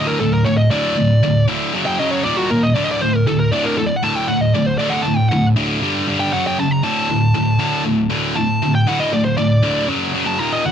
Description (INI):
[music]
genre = metal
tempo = 118 BPM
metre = 4/4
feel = straight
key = unclear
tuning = A4 = 440 Hz
[part]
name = high-gain lead guitar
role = melody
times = 0.0-10.7 s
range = F#4 to Bb5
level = -21 LUFS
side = equal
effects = distortion
[part]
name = heavy high-gain guitar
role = riff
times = 0.0-10.7 s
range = D2 to G3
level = -16 LUFS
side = equal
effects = distortion
[sound]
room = little or no reverb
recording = dry, close 1970s-style studio recording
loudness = -15 LUFS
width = side -8 dB against mid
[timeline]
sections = 0.0-10.7 A section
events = lead electric guitar solo 0.0-10.7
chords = 0.0 D5; 1.7 F#5; 2.3 Eb5; 2.8 D5; 5.8 G5; 6.3 F#5; 6.8 D5; 9.9 F#5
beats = 0.21 | 0.72 1.23 1.74 2.25 | 2.76 3.27 3.78 4.29 | 4.80 5.31 5.82 6.33 | 6.84 7.35 7.86 8.37 | 8.88 9.38 9.89 10.40